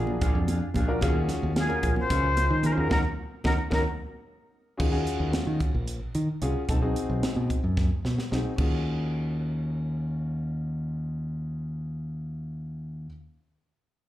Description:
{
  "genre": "electric jazz fusion",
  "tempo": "222 BPM (eighths)",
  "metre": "7/8",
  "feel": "straight",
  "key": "Eb dorian",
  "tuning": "A4 = 439 Hz",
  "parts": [
    { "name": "warm grand piano", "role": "accompaniment", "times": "0.0-13.1 s", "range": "C4 to Bb4", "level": "-32 LUFS", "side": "left 2 dB", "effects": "slapback echo" },
    { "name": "mellow electric guitar", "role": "stabs", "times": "0.0-3.8 s", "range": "Gb3 to Ab4", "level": "-34 LUFS", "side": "equal", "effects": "lush chorus, slapback echo" },
    { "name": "modern bright fingered electric bass", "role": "bass", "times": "0.0-13.1 s", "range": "Bb1 to Eb3", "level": "-28 LUFS", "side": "equal", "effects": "none" },
    { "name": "congas", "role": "percussion", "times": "0.1-3.8 s", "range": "none", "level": "-36 LUFS", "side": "right 3 dB", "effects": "slapback echo" },
    { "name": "crisp fusion drum kit", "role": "drums", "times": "0.2-8.7 s", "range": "crash cymbal, hi-hat, kick drum, snare drum", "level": "-30 LUFS", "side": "equal", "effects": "none" },
    { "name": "jazz flute", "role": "melody", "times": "1.6-3.8 s", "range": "Ab4 to C5", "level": "-29 LUFS", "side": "left 2 dB", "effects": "slapback echo" }
  ],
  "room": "little or no reverb",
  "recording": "live gig heard through the venue's PA, club reverb",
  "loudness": "-25 LUFS",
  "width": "side -14 dB against mid",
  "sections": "0.0-4.8 A section; 4.8-8.6 B section; 8.6-12.4 C section",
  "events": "band accent 2.9-4.8; drum fill 3.2-4.8, 7.8-8.6",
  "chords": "0.0 Bb7b13; 1.0 Ebm11; 6.7 B(b9); 8.6 Ebm11"
}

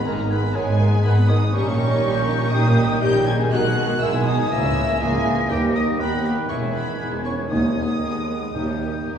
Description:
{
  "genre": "classical",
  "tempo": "121 BPM",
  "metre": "4/4",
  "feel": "straight",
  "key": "unclear",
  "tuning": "A4 = 441 Hz",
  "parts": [
    { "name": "clear symphonic violin section", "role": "melody", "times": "0.0-9.0 s", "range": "G5 to G#6", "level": "-31 LUFS", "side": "left 1 dB", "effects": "none" },
    { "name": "rich studio violin section", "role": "second line", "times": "0.0-9.2 s", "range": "B3 to B4", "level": "-33 LUFS", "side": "left 4 dB", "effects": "none" },
    { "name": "warm clarinet", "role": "second line", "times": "0.0-9.2 s", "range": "B4 to G#5", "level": "-31 LUFS", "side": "left 2 dB", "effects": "none" },
    { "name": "warm studio viola section", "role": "accompaniment", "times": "0.0-9.2 s", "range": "D#3 to E4", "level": "-29 LUFS", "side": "right 1 dB", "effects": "none" },
    { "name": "warm French horn section", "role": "sustained chords", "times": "0.0-9.1 s", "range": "G3 to G#4", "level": "-28 LUFS", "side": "left 2 dB", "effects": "none" },
    { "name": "warm trombone section", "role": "sustained chords", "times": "0.0-9.2 s", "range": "D#3 to A#3", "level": "-28 LUFS", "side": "right 2 dB", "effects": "none" },
    { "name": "timpani", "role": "percussion", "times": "0.0-0.3, 7.5-9.2 s", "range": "G#2 to D#3", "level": "-26 LUFS", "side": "equal", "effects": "none" },
    { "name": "mellow hollow silver concert flute", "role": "second line", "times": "0.1-9.2 s", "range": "G6 to A#6", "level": "-33 LUFS", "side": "left 4 dB", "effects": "none" },
    { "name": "mellow oboe", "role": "second line", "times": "0.1-9.1 s", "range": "G4 to G#5", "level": "-31 LUFS", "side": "right 2 dB", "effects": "none" },
    { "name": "warm bassoon", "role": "accompaniment", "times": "0.1-9.2 s", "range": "D#3 to E3", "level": "-32 LUFS", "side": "right 4 dB", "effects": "none" },
    { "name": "clear symphonic double bass section", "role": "bass", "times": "0.1-9.2 s", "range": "E1 to D#2", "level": "-26 LUFS", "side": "right 1 dB", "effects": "none" },
    { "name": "rich symphonic cello section", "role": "bass", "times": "0.1-9.2 s", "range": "C#2 to B2", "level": "-24 LUFS", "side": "equal", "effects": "none" }
  ],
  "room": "wet scoring stage reverb, RT60 1.7 s",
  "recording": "heard from further back in the room, small room ambience",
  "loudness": "-18 LUFS",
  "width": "side -8 dB against mid",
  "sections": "0.0-9.2 A section",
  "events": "none",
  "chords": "0.0 G#m; 1.5 D#7/A#; 3.5 G#m/B; 4.5 A#m7b5/C#; 5.5 D#; 6.5 Emaj7; 7.5 G#m/D#; 8.5 D#"
}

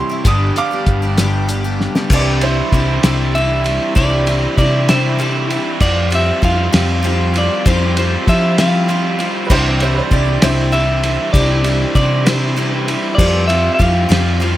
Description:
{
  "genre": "folk rock and heartland rock",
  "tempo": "65 BPM (dotted quarters)",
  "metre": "6/8",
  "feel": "straight",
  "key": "C major",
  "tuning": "A4 = 440 Hz",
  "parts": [
    { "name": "bright upright piano", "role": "second line", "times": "0.0-3.2, 9.5-10.7 s", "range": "E4 to Eb6", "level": "-22 LUFS", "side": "right 5 dB", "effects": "none" },
    { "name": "picked twelve-string acoustic guitar", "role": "accompaniment", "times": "0.0-14.6 s", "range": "G2 to G4", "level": "-22 LUFS", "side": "left 3 dB", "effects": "none" },
    { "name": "accordion", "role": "sustained chords", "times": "0.0-14.6 s", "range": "D4 to C6", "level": "-30 LUFS", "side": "right 2 dB", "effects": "none" },
    { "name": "raw garage guitar", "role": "riff", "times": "0.0-14.6 s", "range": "G2 to G4", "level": "-21 LUFS", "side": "right 1 dB", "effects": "overdrive, spring reverb" },
    { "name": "cloth-damped thuddy drum kit", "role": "drums", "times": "0.2-14.6 s", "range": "crash cymbal, hi-hat, kick drum, ride cymbal, snare drum", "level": "-18 LUFS", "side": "equal", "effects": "none" },
    { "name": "hollow-body short-scale picked electric bass", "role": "bass", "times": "0.3-14.6 s", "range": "G1 to F3", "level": "-17 LUFS", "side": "equal", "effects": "none" },
    { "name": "clean electric guitar", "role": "melody", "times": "3.3-14.6 s", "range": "C5 to F5", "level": "-20 LUFS", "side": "equal", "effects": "spring reverb" },
    { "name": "dark upright piano", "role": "accompaniment", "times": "9.5-14.6 s", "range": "C4 to C5", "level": "-29 LUFS", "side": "equal", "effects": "none" }
  ],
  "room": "light reverb",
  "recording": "none",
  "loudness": "-12 LUFS",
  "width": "side -14 dB against mid",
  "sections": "0.0-2.1 A section; 2.1-14.6 B section",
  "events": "upright piano solo 0.0-2.1; drum fill 1.8-2.1",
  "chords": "0.3 G; 2.1 Cadd9; 5.8 Fsus2; 9.5 Cadd9; 13.2 Fsus2"
}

